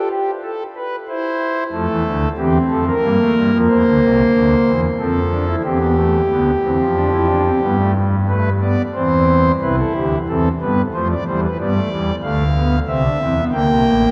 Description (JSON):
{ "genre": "classical, baroque-style 3-part fugue for pipe organ", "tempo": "92 BPM", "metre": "3/4", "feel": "straight", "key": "unclear", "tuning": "A4 = 440 Hz", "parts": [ { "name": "pipe organ, foundations", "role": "solo", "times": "0.0-14.1 s", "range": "A1 to G5", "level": "-17 LUFS", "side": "equal", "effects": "none" } ], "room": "wet cathedral reverb, RT60 6.1 s", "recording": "in a vast, echoing space", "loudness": "-17 LUFS", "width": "mono", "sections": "0.0-9.6 A section; 9.6-14.1 B section", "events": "none", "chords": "0.0 G; 1.1 C/E; 1.7 F; 3.0 Gm7; 3.7 C7; 5.0 F; 5.6 C/E; 7.0 Dm7/F; 7.6 G; 8.9 C/E; 9.6 Am/C; 10.9 Dm/F; 11.6 G; 12.9 C; 13.5 Gm" }